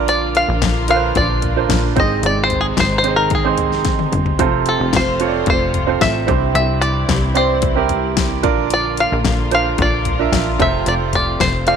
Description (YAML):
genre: piano-driven pop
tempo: 111 BPM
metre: 4/4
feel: straight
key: unclear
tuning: A4 = 438 Hz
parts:
  - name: bright upright piano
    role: accompaniment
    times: 0.0-11.8 s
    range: G2 to E5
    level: -20 LUFS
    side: right 12 dB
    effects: none
  - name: dark studio string section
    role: sustained chords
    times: 0.0-11.8 s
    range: C3 to F4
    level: -26 LUFS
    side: left 3 dB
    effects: none
  - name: plucky analog bass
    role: bass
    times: 0.0-11.8 s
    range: F1 to C2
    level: -20 LUFS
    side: left 1 dB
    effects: none
  - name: bluegrass banjo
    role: melody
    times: 0.1-11.8 s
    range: Ab4 to F5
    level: -19 LUFS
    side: left 2 dB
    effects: none
  - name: pop drum kit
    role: drums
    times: 0.1-11.8 s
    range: hi-hat, kick drum, snare drum, toms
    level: -21 LUFS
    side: left 4 dB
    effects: none
room: light reverb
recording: 1960s-style stereo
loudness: -14 LUFS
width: side -7 dB against mid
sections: 0.0-11.8 A section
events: drum fill 3.9-4.4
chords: 0.0 Bb; 2.0 Ab; 4.4 F; 6.3 C; 8.4 Bb; 10.6 F